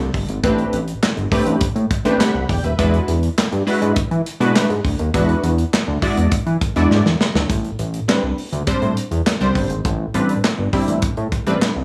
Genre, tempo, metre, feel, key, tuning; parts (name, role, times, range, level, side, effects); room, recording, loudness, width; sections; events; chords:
early-eighties boogie funk; 102 BPM; 4/4; straight; A dorian; A4 = 440 Hz
fat analog bass; bass; 0.0-11.8 s; D#1 to E3; -22 LUFS; equal
modern studio drum kit; drums; 0.0-11.8 s; handclaps, hi-hat, kick drum, snare drum; -23 LUFS; equal
funky polysynth comp; accompaniment; 0.4-11.7 s; G3 to B5; -22 LUFS; equal; chorus
light reverb, small room ambience; -19 LUFS; mono
0.0-7.5 A section; 7.5-11.8 B section
drum fill 6.9-7.5
0.0 Am11; 2.8 E9; 7.5 Am11